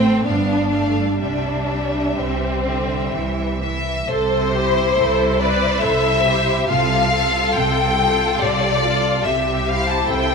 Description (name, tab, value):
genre	classical, slow romantic movement for string orchestra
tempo	61-73 BPM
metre	3/4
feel	rubato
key	C major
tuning	A4 = 440 Hz
part	rich studio violin section	melody	0.0-10.3 s	C5 to A5	-20 LUFS	left 4 dB	none
part	rich studio violin section	second line	0.0-10.3 s	C4 to C5	-22 LUFS	left 1 dB	none
part	rich studio viola section	accompaniment	0.0-10.3 s	G3 to B4	-24 LUFS	right 1 dB	none
part	rich studio cello section	bass	0.0-10.3 s	G2 to E3	-26 LUFS	right 4 dB	none
part	warm studio double bass section	bass	0.0-10.3 s	G1 to C2	-25 LUFS	right 3 dB	none
room	wet scoring stage reverb, RT60 1.5 s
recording	none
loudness	-16 LUFS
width	side -5 dB against mid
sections	0.0-4.1 A section; 4.1-10.3 A section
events	none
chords	0.3 G7; 1.2 C; 6.7 F/C; 9.2 C